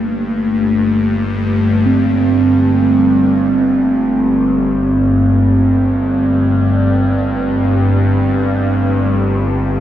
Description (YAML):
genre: dark ambient drone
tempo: free time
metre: none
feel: none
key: G minor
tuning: A4 = 440 Hz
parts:
  - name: quartz singing bowl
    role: arpeggios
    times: 0.0-8.9 s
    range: D3 to C4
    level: -14 LUFS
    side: right 1 dB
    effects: diffuse ambient delay
  - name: bowed-like drone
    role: drone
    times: 0.0-9.8 s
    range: G1 to G2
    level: -15 LUFS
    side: left 1 dB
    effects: built-in reverb, phaser
room: wet cathedral reverb, RT60 6.5 s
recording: none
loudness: -12 LUFS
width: side -11 dB against mid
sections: 0.0-9.8 A section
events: fade-in on synth drone 0.0-9.8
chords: 0.0 G5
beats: free time